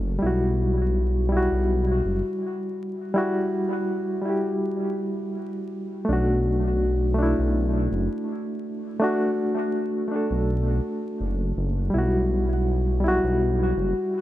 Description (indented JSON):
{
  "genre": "trip hop",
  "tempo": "82 BPM",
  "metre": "4/4",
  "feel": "swing 54% on 16ths",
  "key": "B minor",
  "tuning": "A4 = 440 Hz",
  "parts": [
    { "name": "reed electric piano", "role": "accompaniment", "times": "0.0-14.2 s", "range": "G3 to A4", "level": "-24 LUFS", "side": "equal", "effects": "overdrive, tremolo, tape echo" },
    { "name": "dark detuned saw bass", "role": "bass", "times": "0.0-13.9 s", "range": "F#1 to B1", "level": "-24 LUFS", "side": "equal", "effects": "none" }
  ],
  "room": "light reverb",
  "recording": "echo-heavy mix, vinyl crackle",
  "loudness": "-22 LUFS",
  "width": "side -14 dB against mid",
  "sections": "0.0-6.1 A section; 6.1-14.2 B section",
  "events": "break 3.1-6.1",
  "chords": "0.2 Emadd9; 6.1 Bm7; 11.9 Emadd9"
}